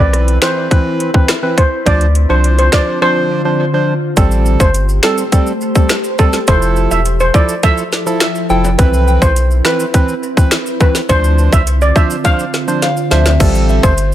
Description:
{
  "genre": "dancehall",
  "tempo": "104 BPM",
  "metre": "4/4",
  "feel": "straight",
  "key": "A minor",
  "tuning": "A4 = 440 Hz",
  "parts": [
    { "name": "steel pan", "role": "melody", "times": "0.0-13.9 s", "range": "A4 to F5", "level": "-17 LUFS", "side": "right 1 dB", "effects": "digital delay" },
    { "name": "percussive organ stab", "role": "accompaniment", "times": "0.0-13.9 s", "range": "E3 to C5", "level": "-18 LUFS", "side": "right 2 dB", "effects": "chorus" },
    { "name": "glassy FM pad", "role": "sustained chords", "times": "0.0-14.1 s", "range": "D3 to C5", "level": "-21 LUFS", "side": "equal", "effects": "ensemble chorus, built-in reverb, sidechain pumping" },
    { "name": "warm sub bass", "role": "bass", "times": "0.0-14.1 s", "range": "E1 to D2", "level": "-13 LUFS", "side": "equal", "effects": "none" },
    { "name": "island pop drum kit", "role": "drums", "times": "0.1-14.1 s", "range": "crash cymbal, finger snaps, hi-hat, kick drum, rim click, snare drum", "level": "-13 LUFS", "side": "equal", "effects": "overdrive" },
    { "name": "maracas and timbales", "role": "percussion", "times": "4.2-14.1 s", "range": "none", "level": "-27 LUFS", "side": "right 1 dB", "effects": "none" },
    { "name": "soft synth bell", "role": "second line", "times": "8.2-9.0, 12.8-13.7 s", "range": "E5 to G5", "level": "-21 LUFS", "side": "left 4 dB", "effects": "chorus, digital delay" }
  ],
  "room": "light reverb, digital ambience",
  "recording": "none",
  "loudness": "-10 LUFS",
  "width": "side -12 dB against mid",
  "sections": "0.0-4.2 A section; 4.2-14.1 B section",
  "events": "break 3.0-4.2; drum fill 12.8-13.4",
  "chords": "0.0 Cmaj7; 1.9 Dm7; 4.2 Am7; 6.5 Fmaj7; 8.8 Cmaj7; 11.1 Dm7; 13.4 Am7"
}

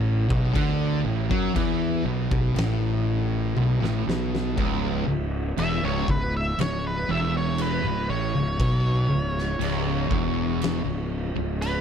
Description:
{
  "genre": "stoner and doom metal",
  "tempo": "60 BPM",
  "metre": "4/4",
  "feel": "straight",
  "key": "C# phrygian",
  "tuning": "A4 = 442 Hz",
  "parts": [
    { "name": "fuzz guitar", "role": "riff", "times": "0.0-11.8 s", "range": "C#2 to F#3", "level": "-28 LUFS", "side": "left 8 dB", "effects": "distortion" },
    { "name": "fuzz guitar", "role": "riff", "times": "0.0-11.8 s", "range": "C#2 to F#3", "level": "-28 LUFS", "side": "right 8 dB", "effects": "distortion" },
    { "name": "fuzz fingered electric bass", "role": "bass", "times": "0.0-11.8 s", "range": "C#1 to F#2", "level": "-29 LUFS", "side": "equal", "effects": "overdrive" },
    { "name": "oversized low-tuned drum kit", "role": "drums", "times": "0.3-11.8 s", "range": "crash cymbal, kick drum, snare drum, toms", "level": "-30 LUFS", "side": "equal", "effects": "none" },
    { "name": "octave-fuzz lead guitar", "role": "melody", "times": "5.6-11.8 s", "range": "B4 to E5", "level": "-30 LUFS", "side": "equal", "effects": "distortion" }
  ],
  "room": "small room ambience",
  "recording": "none",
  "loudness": "-22 LUFS",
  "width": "side -8 dB against mid",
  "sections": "0.0-4.6 A section; 4.6-11.8 B section",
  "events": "drum fill 3.6-4.6; lead electric guitar solo 4.6-11.8",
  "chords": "0.0 A5; 4.6 C#m"
}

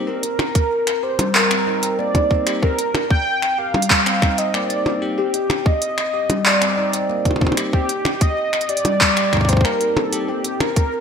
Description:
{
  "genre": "IDM",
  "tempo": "94 BPM",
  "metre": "4/4",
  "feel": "straight",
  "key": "C dorian",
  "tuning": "A4 = 440 Hz",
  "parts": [
    { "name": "barky tine electric piano", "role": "arpeggios", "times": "0.0-10.4 s", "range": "G3 to G4", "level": "-24 LUFS", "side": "left 2 dB", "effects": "phaser, digital delay" },
    { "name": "warm velvety synth lead", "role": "melody", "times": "0.1-11.0 s", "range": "G4 to G5", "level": "-21 LUFS", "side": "right 1 dB", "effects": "chorus, cassette tape, digital delay" },
    { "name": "glitchy drum kit", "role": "drums", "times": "0.2-10.9 s", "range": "finger snaps, handclaps, hi-hat, percussion blips", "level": "-20 LUFS", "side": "equal", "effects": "overdrive, gated reverb" },
    { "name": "electronic kick drum", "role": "drums", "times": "0.6-10.9 s", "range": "none", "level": "-18 LUFS", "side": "equal", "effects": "overdrive" }
  ],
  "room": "wet lush hall reverb, RT60 1.5 s, digital ambience",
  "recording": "bright 1980s-style digital production",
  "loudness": "-16 LUFS",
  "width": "side -6 dB against mid",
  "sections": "0.0-11.0 A section",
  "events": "none",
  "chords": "0.0 Cm7"
}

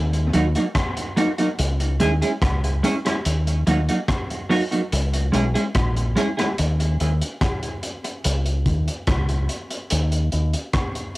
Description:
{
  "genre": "dub reggae",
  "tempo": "72 BPM",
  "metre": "4/4",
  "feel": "straight",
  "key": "unclear",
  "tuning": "A4 = 435 Hz",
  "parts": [
    { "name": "deep dub fingered electric bass", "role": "bass", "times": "0.0-10.5 s", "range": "Bb1 to Eb2", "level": "-20 LUFS", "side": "equal", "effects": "none" },
    { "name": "crunchy breakbeat drum kit", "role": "drums", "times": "0.1-11.2 s", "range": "hi-hat, kick drum, rim click", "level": "-25 LUFS", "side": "equal", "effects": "cassette tape, dub echo" },
    { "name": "semi-hollow electric guitar", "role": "accompaniment", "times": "0.3-6.5 s", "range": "Gb3 to Ab4", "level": "-23 LUFS", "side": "right 1 dB", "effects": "lush chorus, dub echo" }
  ],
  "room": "light reverb, studio ambience",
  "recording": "home recording on cassette",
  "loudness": "-19 LUFS",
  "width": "side -19 dB against mid",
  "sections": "0.0-11.2 A section",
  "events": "none",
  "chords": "0.0 Ebm; 1.6 Dbm; 3.2 Ebm; 4.9 Dbm; 6.6 N.C.; 8.2 Dbsus2; 9.9 N.C."
}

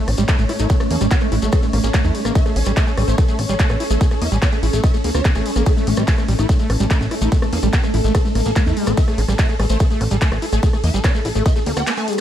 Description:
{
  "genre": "psychedelic trance",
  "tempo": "145 BPM",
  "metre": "4/4",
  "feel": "straight",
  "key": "A major",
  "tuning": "A4 = 440 Hz",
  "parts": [
    { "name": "swarming rave lead", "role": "melody", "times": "0.0-12.2 s", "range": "A3 to A5", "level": "-25 LUFS", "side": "equal", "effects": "chorus, phaser, sidechain pumping, ping-pong delay" },
    { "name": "evolving wavetable pad", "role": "sustained chords", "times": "0.0-12.2 s", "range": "C#4 to C#5", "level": "-27 LUFS", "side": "equal", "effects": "chorus, built-in reverb, sidechain pumping" },
    { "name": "overdriven acid bass", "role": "riff", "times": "0.0-12.2 s", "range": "G3 to E4", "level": "-25 LUFS", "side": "equal", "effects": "distortion, auto-pan, sidechain pumping, ping-pong delay" },
    { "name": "plucky analog bass", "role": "bass", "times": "0.1-11.8 s", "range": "A1 to E2", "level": "-19 LUFS", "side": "equal", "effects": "none" },
    { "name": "big-room dance drum kit", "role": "drums", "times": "0.1-12.2 s", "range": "handclaps, hi-hat, ride cymbal, rim click", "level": "-27 LUFS", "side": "left 1 dB", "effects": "studio reverb" },
    { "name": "shekere", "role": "percussion", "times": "0.2-12.2 s", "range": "none", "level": "-34 LUFS", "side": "left 4 dB", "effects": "none" },
    { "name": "electronic kick drum", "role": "drums", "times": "0.3-11.5 s", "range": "none", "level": "-16 LUFS", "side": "equal", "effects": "studio reverb" }
  ],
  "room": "digital ambience",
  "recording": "dark, warm production",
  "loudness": "-15 LUFS",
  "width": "side -11 dB against mid",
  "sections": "0.0-12.2 A section",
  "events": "break 11.9-12.2",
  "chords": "0.0 A5"
}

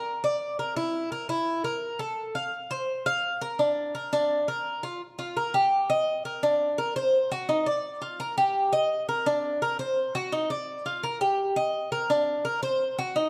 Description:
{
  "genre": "latin",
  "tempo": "169 BPM",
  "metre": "4/4",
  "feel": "straight",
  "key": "Bb major",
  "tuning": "A4 = 441 Hz",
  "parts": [
    { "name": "Cuban tres", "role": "solo", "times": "0.0-13.3 s", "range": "D4 to F5", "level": "-27 LUFS", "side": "equal", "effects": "none" }
  ],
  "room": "light reverb",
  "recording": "close, detailed microphones",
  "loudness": "-27 LUFS",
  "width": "mono",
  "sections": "0.0-5.0 A section; 5.0-13.3 B section",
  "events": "none",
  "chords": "none"
}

